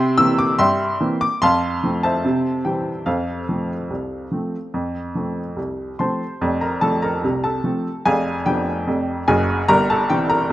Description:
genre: ragtime piano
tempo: 73 BPM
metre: 2/4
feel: straight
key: F major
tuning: A4 = 439 Hz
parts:
  - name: clear upright piano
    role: solo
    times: 0.0-10.5 s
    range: F1 to E6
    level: -18 LUFS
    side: equal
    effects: none
room: moderate lush hall reverb, RT60 2.5 s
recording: rough home demo mix, nothing above 10.3 kHz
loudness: -18 LUFS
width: side -14 dB against mid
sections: 0.0-6.4 A section; 6.4-10.5 B section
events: none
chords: 0.0 C7; 1.4 F; 2.2 C; 3.1 F; 8.1 Fdim7; 9.7 C7/G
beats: 0.59 | 1.41 2.24 | 3.07 3.90 | 4.74 5.57 | 6.41 7.23 | 8.05 8.87 | 9.69 10.51

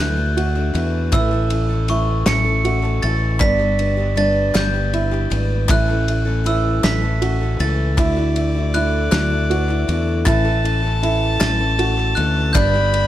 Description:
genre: indie folk with a building arrangement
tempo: 52 BPM (dotted quarters)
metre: 6/8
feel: straight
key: unclear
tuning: A4 = 441 Hz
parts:
  - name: glockenspiel with brass mallets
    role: melody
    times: 0.0-13.1 s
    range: C#6 to C#7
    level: -25 LUFS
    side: equal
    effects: slapback echo
  - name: felt-muted upright piano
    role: accompaniment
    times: 0.0-13.1 s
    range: G1 to E5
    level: -28 LUFS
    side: left 6 dB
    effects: none
  - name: picked steel-string acoustic guitar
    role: accompaniment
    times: 0.0-13.1 s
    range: G2 to A4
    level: -27 LUFS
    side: left 3 dB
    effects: none
  - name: dark upright piano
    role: arpeggios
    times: 0.0-13.1 s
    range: D4 to F#4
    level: -24 LUFS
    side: right 4 dB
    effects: none
  - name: fingered electric bass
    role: bass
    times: 0.0-13.1 s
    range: G1 to E2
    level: -20 LUFS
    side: equal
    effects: none
  - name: loose indie drum kit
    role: drums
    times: 0.4-13.1 s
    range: kick drum, ride cymbal, snare drum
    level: -24 LUFS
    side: equal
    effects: none
  - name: group handclap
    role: percussion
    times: 0.6-12.8 s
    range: none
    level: -29 LUFS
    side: left 5 dB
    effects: none
  - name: rich fiddle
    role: second line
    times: 8.0-13.1 s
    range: D5 to B5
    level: -26 LUFS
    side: left 2 dB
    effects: none
room: light reverb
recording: dark, warm production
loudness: -16 LUFS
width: side -13 dB against mid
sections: 0.0-13.1 A section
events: none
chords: 0.0 Dadd9; 1.1 A; 3.4 G; 5.7 A; 8.0 Dadd9; 10.3 A; 12.6 G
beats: | 1.13 2.27 | 3.41 4.55 | 5.69 6.84 | 7.98 9.12 | 10.26 11.41 | 12.55

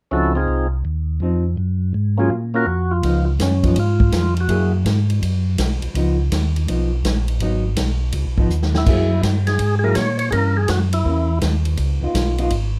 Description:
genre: soul jazz organ trio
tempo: 165 BPM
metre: 4/4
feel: swing 65% on 8ths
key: Db major, Db mixolydian from 3.0 s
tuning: A4 = 438 Hz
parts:
  - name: percussive tonewheel organ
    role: melody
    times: 0.1-4.7, 8.8-11.4 s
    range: Bb3 to Db5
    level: -24 LUFS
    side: equal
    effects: slow rotary speaker
  - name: hollow-body jazz guitar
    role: accompaniment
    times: 0.1-12.5 s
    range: E3 to Ab4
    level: -25 LUFS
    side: equal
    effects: none
  - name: mellow tonewheel organ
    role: bass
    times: 0.1-12.8 s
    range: Ab1 to Bb2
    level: -21 LUFS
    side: equal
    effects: slow rotary speaker
  - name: swinging big-band drum kit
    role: drums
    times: 3.0-12.6 s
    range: crash cymbal, hi-hat, kick drum, ride cymbal, snare drum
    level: -25 LUFS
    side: equal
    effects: none
room: light reverb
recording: none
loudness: -19 LUFS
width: mono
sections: 0.1-3.0 A section; 3.0-12.8 B section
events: drum fill 8.5-8.9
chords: 0.1 Dbmaj9; 1.6 Gbmaj7; 3.0 Db9; 4.5 Gb9; 6.0 Db9; 7.4 Abm7; 8.1 Db9; 8.9 Gb9; 10.3 Gdim7; 11.8 Db9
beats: | 0.12 0.48 0.85 1.21 | 1.58 1.94 2.31 2.67 | 3.04 3.40 3.77 4.13 | 4.50 4.86 5.22 5.59 | 5.95 6.32 6.68 7.05 | 7.41 7.78 8.14 8.50 | 8.87 9.23 9.60 9.96 | 10.33 10.69 11.05 11.42 | 11.78 12.15 12.51

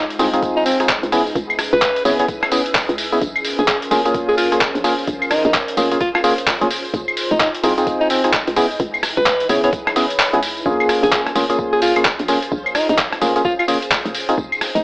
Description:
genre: UK garage, two-step garage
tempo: 129 BPM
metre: 4/4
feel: swing 61% on 16ths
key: Bb minor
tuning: A4 = 444 Hz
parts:
  - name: clear alto saxophone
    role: melody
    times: 0.0-14.8 s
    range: C4 to Db5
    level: -20 LUFS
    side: equal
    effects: tape echo
  - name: soft string machine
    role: sustained chords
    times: 0.0-14.8 s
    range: Db4 to G5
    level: -29 LUFS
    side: equal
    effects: none
  - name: hollow knocking FM bass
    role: bass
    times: 0.0-14.8 s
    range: F1 to Db2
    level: -22 LUFS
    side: equal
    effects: none
  - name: warbly tape-like pad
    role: texture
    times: 0.1-10.7 s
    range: Fb3 to Fb6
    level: -29 LUFS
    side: equal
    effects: chorus, built-in reverb, sidechain pumping
  - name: boom bap sampler-style drum kit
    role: drums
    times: 0.1-14.8 s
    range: claves, handclaps, hi-hat, rim click, tambourine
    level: -19 LUFS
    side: equal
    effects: overdrive, small room ambience
  - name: percussive organ stab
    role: stabs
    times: 0.2-14.3 s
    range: Bb3 to Ab4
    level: -18 LUFS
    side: equal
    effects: wide subtle chorus, cassette tape, tape echo
  - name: electronic kick drum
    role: drums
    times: 0.4-14.5 s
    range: none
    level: -27 LUFS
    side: equal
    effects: overdrive, small room ambience
room: light reverb, digital ambience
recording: dry, gritty hardware recording, AM radio sound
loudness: -15 LUFS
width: side -24 dB against mid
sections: 0.0-10.7 A section; 10.7-14.8 A section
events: drop 0.0-10.7, 10.7-14.8; kick drops out 10.2-10.7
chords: 0.0 Fm7; 1.1 Dbm7; 3.2 Bbm7; 6.7 Fm7; 8.6 Dbm7; 10.7 Bbm7; 14.1 Fm7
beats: 0.42 0.89 | 1.35 1.82 2.29 2.75 | 3.21 3.68 4.14 4.61 | 5.08 5.54 6.01 6.47 | 6.94 7.40 7.87 8.33 | 8.80 9.26 9.73 10.19 | 10.66 11.12 11.59 12.05 | 12.52 12.98 13.45 13.91 | 14.38

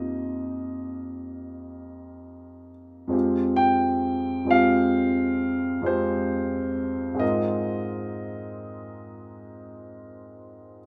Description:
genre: classical, impressionist solo piano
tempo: 45 BPM (dotted quarters)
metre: 9/8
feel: rubato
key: F minor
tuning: A4 = 441 Hz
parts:
  - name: warm concert grand piano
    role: solo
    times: 0.0-10.9 s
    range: F2 to G5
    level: -26 LUFS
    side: equal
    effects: none
room: little or no reverb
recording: none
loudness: -25 LUFS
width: mono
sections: 0.0-10.9 A section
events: none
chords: 0.0 Ebadd9/F; 3.1 Fmadd9; 7.2 Ab69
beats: 0.45 1.80 | 3.14 4.52 5.88 | 7.22 8.59 9.91

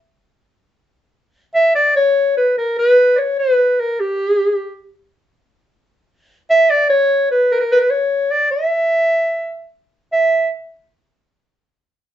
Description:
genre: klezmer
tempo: 73 BPM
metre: 3/4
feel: straight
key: E dorian sharp4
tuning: A4 = 441 Hz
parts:
  - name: mellow clarinet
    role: solo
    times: 1.5-10.5 s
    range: G4 to E5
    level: -13 LUFS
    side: equal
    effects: none
room: moderate small room reverb, RT60 0.6 s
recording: band playing live in one room, nothing above 8.0 kHz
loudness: -13 LUFS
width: side -11 dB against mid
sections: 0.3-10.1 A section; 10.1-12.1 B section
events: none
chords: none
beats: | 0.31 1.14 1.96 | 2.78 3.60 4.42 | 5.24 6.06 6.88 | 7.70 8.51 9.32 | 10.13

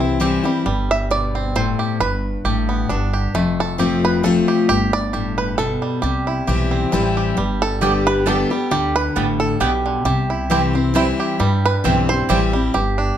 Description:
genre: bluegrass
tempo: 134 BPM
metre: 3/4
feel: swing 54% on 8ths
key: unclear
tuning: A4 = 440 Hz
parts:
  - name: bluegrass banjo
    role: melody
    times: 0.0-13.2 s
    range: D3 to E5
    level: -22 LUFS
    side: right 4 dB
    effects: plate reverb
  - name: picked steel-string acoustic guitar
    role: accompaniment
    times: 0.0-13.2 s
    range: F2 to G4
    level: -19 LUFS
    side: left 3 dB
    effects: none
  - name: upright bass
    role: bass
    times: 0.0-13.1 s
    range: F1 to G2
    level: -23 LUFS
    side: right 1 dB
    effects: none
  - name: mandolin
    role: stabs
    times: 7.8-12.4 s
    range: B3 to G5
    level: -23 LUFS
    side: right 7 dB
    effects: none
room: moderate large studio reverb, RT60 0.8 s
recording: dark, warm production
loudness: -16 LUFS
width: side -10 dB against mid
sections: 0.0-13.2 A section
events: five-string banjo solo 0.0-13.2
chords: 0.0 C; 2.0 G; 3.3 F; 4.7 G; 6.0 C; 7.4 G; 10.1 C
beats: 0.21 | 0.66 1.11 1.55 | 2.00 2.45 2.90 | 3.35 3.79 4.24 | 4.69 5.14 5.58 | 6.03 6.48 6.93 | 7.38 7.82 8.27 | 8.72 9.17 9.61 | 10.06 10.51 10.96 | 11.40 11.85 12.30 | 12.75

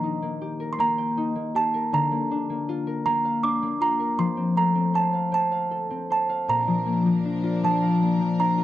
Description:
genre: children's music, lullaby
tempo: 53 BPM (dotted quarters)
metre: 6/8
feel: rubato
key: Bb major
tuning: A4 = 440 Hz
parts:
  - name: music box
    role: melody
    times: 0.0-8.6 s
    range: A5 to D6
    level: -25 LUFS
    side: right 4 dB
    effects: none
  - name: concert harp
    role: accompaniment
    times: 0.0-8.6 s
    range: Bb2 to G5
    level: -24 LUFS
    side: left 3 dB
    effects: none
  - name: warm studio string section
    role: sustained chords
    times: 6.5-8.6 s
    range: F3 to Bb4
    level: -33 LUFS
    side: right 1 dB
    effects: none
room: little or no reverb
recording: dry, close 1970s-style studio recording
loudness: -22 LUFS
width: side -13 dB against mid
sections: 0.0-8.6 A section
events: none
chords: 0.0 Eb; 1.9 Bb/D; 4.2 F; 6.5 Bb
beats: 0.79 | 1.92 3.05 | 4.18 5.32 | 6.48 7.63

